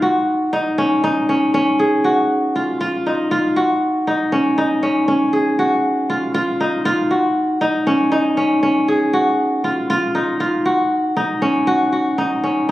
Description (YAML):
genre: contemporary instrumental, contemporary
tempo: 237 BPM (eighths)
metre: 7/8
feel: straight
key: Eb minor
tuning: A4 = 440 Hz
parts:
  - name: kora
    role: solo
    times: 0.0-12.7 s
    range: Db4 to Ab4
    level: -15 LUFS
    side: equal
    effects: none
room: wet recital hall reverb, RT60 1.5 s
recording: recorded on a phone in the room, club reverb, compression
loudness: -15 LUFS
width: side -16 dB against mid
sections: 0.0-11.7 A section; 11.7-12.7 B section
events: none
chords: 0.0 Ebm9; 11.7 Ebm7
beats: 0.03 0.28 0.54 0.79 | 1.04 1.29 1.54 1.80 2.05 2.30 2.56 | 2.81 3.06 3.31 3.57 3.82 4.07 4.33 | 4.58 4.83 5.08 5.34 5.59 5.84 6.10 | 6.35 6.60 6.86 7.11 7.36 7.62 7.87 | 8.12 8.38 8.63 8.88 9.13 9.39 9.64 | 9.89 10.15 10.40 10.65 10.90 11.16 11.41 | 11.66 11.92 12.17 12.43 12.68